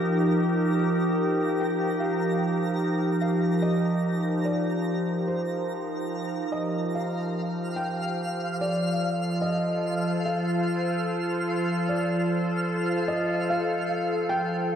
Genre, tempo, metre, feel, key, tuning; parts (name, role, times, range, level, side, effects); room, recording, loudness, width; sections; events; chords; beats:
ambient; 74 BPM; 4/4; straight; F mixolydian; A4 = 436 Hz
evolving wavetable pad; sustained chords; 0.0-14.8 s; F3 to C5; -25 LUFS; equal; chorus, built-in reverb
twinkling granular texture; texture; 0.0-14.8 s; F5 to Bb5; -36 LUFS; equal; built-in reverb, analog chorus
felt-muted upright piano; melody; 0.8-14.8 s; Bb4 to G5; -32 LUFS; equal; diffuse ambient delay
wet lush hall reverb, RT60 3.1 s; dreamy mix soaked in reverb; -24 LUFS; side -8 dB against mid
0.0-14.8 A section
fade-in on synth texture 0.0-14.8; fade-in on felt piano 0.0-14.8
0.0 F9sus4; 6.9 Dm7/F
| 0.41 1.22 2.03 2.84 | 3.64 4.46 5.28 6.11 | 6.94 7.77 8.60 9.43 | 10.24 11.05 11.86 12.67 | 13.48 14.29